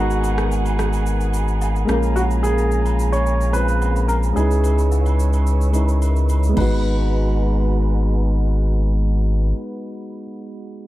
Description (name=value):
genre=amapiano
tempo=109 BPM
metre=4/4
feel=straight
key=G# dorian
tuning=A4 = 439 Hz
part: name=bright grand piano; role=melody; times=0.0-10.2 s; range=F#4 to C#5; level=-26 LUFS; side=right 1 dB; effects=low-pass filter, tape echo
part: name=soft electric-piano-like synth keys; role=accompaniment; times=0.0-10.9 s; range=G#3 to B4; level=-24 LUFS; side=equal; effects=chorus, low-pass filter
part: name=bright studio string section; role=sustained chords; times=0.0-9.5 s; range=G#3 to E6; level=-32 LUFS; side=right 4 dB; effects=sidechain pumping, low-pass filter
part: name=warm sub bass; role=bass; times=0.0-9.5 s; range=G#1 to C#2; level=-18 LUFS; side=equal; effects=none
part: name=afro-pop drum kit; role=drums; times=0.1-6.7 s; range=crash cymbal, kick drum, rim click, shaker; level=-30 LUFS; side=equal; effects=none
part: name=agogo bells and woodblock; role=percussion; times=0.2-6.8 s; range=none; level=-33 LUFS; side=right 7 dB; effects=none
room=digital ambience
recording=dark, warm production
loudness=-16 LUFS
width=side -16 dB against mid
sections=0.0-6.6 A section; 6.6-8.8 B section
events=filter sweep 0.0-6.6; kick muted 5.5-6.6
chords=0.0 G#m9; 1.9 A#m9; 4.4 C#m9; 6.6 G#m9